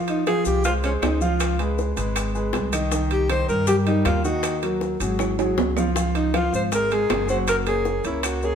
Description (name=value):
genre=Afro-Cuban jazz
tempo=158 BPM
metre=4/4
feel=straight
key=unclear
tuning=A4 = 440 Hz
part: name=clear grand piano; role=accompaniment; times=0.0-8.6 s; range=Eb3 to Gb5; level=-25 LUFS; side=equal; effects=none
part: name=breathy alto saxophone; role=melody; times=0.1-8.6 s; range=Db4 to C5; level=-24 LUFS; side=equal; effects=none
part: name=bongos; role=percussion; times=0.1-8.4 s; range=none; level=-31 LUFS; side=left 4 dB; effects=none
part: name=maracas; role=percussion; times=0.1-8.6 s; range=none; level=-37 LUFS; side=left 6 dB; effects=none
part: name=timbales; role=percussion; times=0.1-8.4 s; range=none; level=-30 LUFS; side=right 7 dB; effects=none
part: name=claves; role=percussion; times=0.3-8.4 s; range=none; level=-40 LUFS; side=left 1 dB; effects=none
part: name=upright bass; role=bass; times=0.5-8.6 s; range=Gb1 to G2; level=-25 LUFS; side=left 1 dB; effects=none
room=moderate large studio reverb, RT60 1.1 s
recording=band playing live in one room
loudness=-20 LUFS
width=side -8 dB against mid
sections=0.0-8.6 A section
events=drum fill 5.2-6.0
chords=0.0 Fm; 1.4 Db7; 2.9 Cm7; 4.4 Ebm; 5.2 Dbadd11/Ab; 6.0 Db6; 7.5 Gbadd9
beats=0.27 0.64 1.02 | 1.40 1.78 2.16 2.54 | 2.92 3.30 3.68 4.06 | 4.44 4.82 5.20 5.58 | 5.96 6.34 6.72 7.10 | 7.48 7.86 8.24